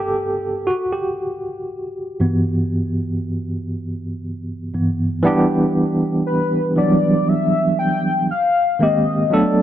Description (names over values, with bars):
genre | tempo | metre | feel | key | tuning
R&B | 59 BPM | 4/4 | straight | G major | A4 = 440 Hz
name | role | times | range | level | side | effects
mellow tine electric piano | accompaniment | 0.0-9.6 s | G2 to A4 | -18 LUFS | right 1 dB | fast tremolo
warm velvety synth lead | melody | 6.3-9.6 s | B4 to G5 | -19 LUFS | left 4 dB | chorus
room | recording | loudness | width
light reverb | dark, warm production | -17 LUFS | side -11 dB against mid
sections
0.0-5.2 A section; 5.2-9.6 B section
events
tine electric piano solo 0.0-5.2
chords
0.0 Gmaj7; 0.7 G6; 5.2 Em7; 8.3 Abmaj9